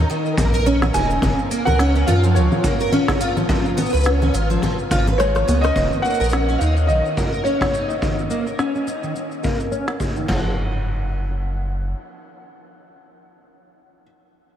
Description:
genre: folktronica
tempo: 106 BPM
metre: 4/4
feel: swing 56% on 16ths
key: unclear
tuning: A4 = 441 Hz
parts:
  - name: picked plugged-in twelve-string acoustic guitar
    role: arpeggios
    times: 0.0-10.5 s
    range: D#3 to B4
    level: -22 LUFS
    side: equal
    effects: ensemble chorus, low-pass filter, tape echo
  - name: warm sub bass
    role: bass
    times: 0.0-11.9 s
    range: D#1 to F#2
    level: -19 LUFS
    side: equal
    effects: none
  - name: flickering grainy texture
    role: texture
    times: 0.0-5.8 s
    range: A#4 to A#5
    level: -34 LUFS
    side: right 1 dB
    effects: none
  - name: organic electronic drum kit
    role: drums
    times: 0.1-10.3 s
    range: congas, hi-hat, rim click, shaker, snare drum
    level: -26 LUFS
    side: left 1 dB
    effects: none
  - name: street-band drum kit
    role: drums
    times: 0.4-10.4 s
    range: crash cymbal, kick drum, toms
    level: -23 LUFS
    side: equal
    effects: none
  - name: felt-muted upright piano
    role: melody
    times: 0.9-14.0 s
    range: C#5 to G#5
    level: -25 LUFS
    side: equal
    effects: analog chorus, tape echo
room: moderate huge ambient reverb, RT60 8.0 s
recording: dreamy mix soaked in reverb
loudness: -17 LUFS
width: side -10 dB against mid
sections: 0.0-5.8 A section; 5.8-10.3 B section; 10.3-12.5 C section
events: drum fill 4.9-5.8; kick drops out 5.2-5.8; filter sweep on twelve-string acoustic guitar 5.8-10.3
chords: 0.0 D#5; 1.2 F#maj7; 3.5 C#7; 5.8 D#7(no3); 10.3 N.C.

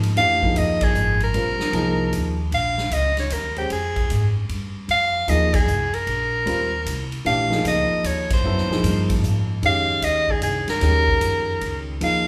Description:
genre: modal jazz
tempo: 152 BPM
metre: 3/4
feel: swing 65% on 8ths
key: Bb dorian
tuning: A4 = 440 Hz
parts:
  - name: warm baby grand piano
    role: accompaniment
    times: 0.0-12.3 s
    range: Eb3 to C5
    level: -28 LUFS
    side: equal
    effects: none
  - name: upright bass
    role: bass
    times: 0.0-12.3 s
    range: Ab1 to Ab2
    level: -27 LUFS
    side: equal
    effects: none
  - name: swinging big-band drum kit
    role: drums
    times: 0.0-12.1 s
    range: hi-hat, kick drum, ride cymbal, snare drum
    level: -29 LUFS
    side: equal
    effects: none
  - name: clear soprano saxophone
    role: melody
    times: 0.2-12.3 s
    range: G4 to F5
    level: -24 LUFS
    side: equal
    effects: none
room: wet large studio reverb, RT60 1.1 s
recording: band playing live in one room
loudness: -21 LUFS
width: mono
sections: 0.2-12.3 A section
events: band accent 0.8, 5.5, 8.2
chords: 0.2 Bb9sus4

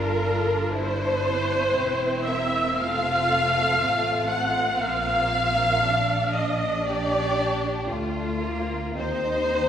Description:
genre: classical, slow romantic movement for string orchestra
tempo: 58 BPM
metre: 4/4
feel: rubato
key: Bb major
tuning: A4 = 437 Hz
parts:
  - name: warm symphonic violin section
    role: melody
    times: 0.0-9.7 s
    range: Bb4 to Gb5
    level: -30 LUFS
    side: left 4 dB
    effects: none
  - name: warm symphonic violin section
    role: second line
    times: 0.0-9.7 s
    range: A3 to G4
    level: -31 LUFS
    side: left 1 dB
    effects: none
  - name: warm symphonic viola section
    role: accompaniment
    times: 0.0-9.7 s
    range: Bb4 to Gb5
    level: -24 LUFS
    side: equal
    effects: none
  - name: rich symphonic cello section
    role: bass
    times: 0.0-9.7 s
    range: C4 to F4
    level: -33 LUFS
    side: right 2 dB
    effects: none
  - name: warm studio double bass section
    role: bass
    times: 0.0-9.7 s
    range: E1 to Eb2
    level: -30 LUFS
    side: right 1 dB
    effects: none
room: wet scoring stage reverb, RT60 1.8 s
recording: heard from further back in the room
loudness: -21 LUFS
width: side -9 dB against mid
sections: 0.0-9.7 A section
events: none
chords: 0.0 Gm; 0.7 C7/G; 2.8 F; 4.8 Bb; 9.0 Cm/Eb

